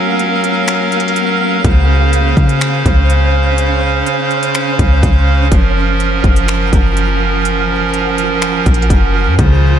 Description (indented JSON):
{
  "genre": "hip hop, atmospheric cloud-rap",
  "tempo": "124 BPM",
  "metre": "4/4",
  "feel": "half-time",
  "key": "unclear",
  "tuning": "A4 = 441 Hz",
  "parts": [
    { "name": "pipe organ, clarinet reed", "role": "sustained chords", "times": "0.0-9.8 s", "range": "Db3 to F5", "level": "-14 LUFS", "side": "right 3 dB", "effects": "sidechain pumping" },
    { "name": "twinkling granular texture", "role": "texture", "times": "0.0-9.8 s", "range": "F3 to Gb5", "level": "-22 LUFS", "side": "equal", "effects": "built-in reverb, analog chorus" },
    { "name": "trap drum kit", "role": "drums", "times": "0.2-9.5 s", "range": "finger snaps, hi-hat, kick drum", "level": "-14 LUFS", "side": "equal", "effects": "vintage 12-bit sampler grit" },
    { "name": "soft 808-style bass", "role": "bass", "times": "1.6-9.8 s", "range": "Gb1 to Db3", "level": "-13 LUFS", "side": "equal", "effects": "none" },
    { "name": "concert harp", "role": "arpeggios", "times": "9.4-9.8 s", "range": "Db3", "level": "-14 LUFS", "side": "left 3 dB", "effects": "low-pass filter, ping-pong delay" }
  ],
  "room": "moderate lush hall reverb, RT60 1.6 s, digital ambience",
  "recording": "dreamy mix soaked in reverb",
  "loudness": "-10 LUFS",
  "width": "side -9 dB against mid",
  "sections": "0.0-9.8 A section",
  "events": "break 0.0-1.6",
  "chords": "0.0 Gbmaj7; 1.6 Dbmaj7; 5.5 Gbmaj7"
}